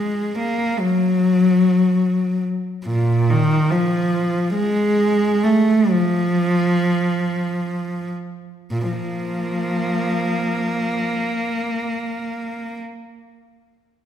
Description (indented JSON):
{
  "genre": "classical, free, expressive piece for unaccompanied cello",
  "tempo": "free time",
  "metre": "none",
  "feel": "none",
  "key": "unclear",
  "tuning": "A4 = 439 Hz",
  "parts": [
    { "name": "warm cello", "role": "solo", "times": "0.0-12.8 s", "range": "Bb2 to Bb3", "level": "-18 LUFS", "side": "equal", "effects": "none" }
  ],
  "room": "wet scoring stage reverb, RT60 1.9 s",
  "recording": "recorded in a church or concert hall",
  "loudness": "-17 LUFS",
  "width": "side -9 dB against mid",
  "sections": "0.0-8.7 A section; 8.7-12.0 B section",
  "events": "slowing down 1.6-8.7",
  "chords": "none",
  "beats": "free time"
}